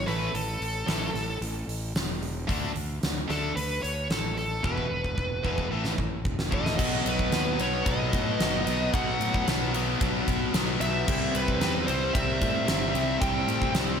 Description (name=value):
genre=hard rock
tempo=112 BPM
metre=4/4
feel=straight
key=unclear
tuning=A4 = 441 Hz
part: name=high-gain lead guitar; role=melody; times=0.0-13.7 s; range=A4 to G5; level=-31 LUFS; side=equal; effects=distortion, digital delay
part: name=fuzz fingered electric bass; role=bass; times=0.0-14.0 s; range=E1 to A2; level=-32 LUFS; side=equal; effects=overdrive
part: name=distorted electric guitar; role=riff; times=0.1-14.0 s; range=E2 to D4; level=-33 LUFS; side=left 11 dB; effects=overdrive, slapback echo
part: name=heavy high-gain guitar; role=riff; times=0.1-14.0 s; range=E2 to D4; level=-34 LUFS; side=right 9 dB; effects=distortion, slapback echo
part: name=huge arena drum kit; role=drums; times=0.1-13.9 s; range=crash cymbal, hi-hat, kick drum, ride cymbal, snare drum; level=-30 LUFS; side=equal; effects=none
part: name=overdriven electric guitar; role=riff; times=6.8-14.0 s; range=B2 to C4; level=-33 LUFS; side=equal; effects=none
room=moderate concert hall reverb, RT60 2.1 s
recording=big arena sound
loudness=-25 LUFS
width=side -7 dB against mid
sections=0.0-6.8 A section; 6.8-14.0 B section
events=drum fill 4.6-6.8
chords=0.1 A5; 2.5 D5; 4.6 E5; 5.7 A5; 6.8 B; 11.1 C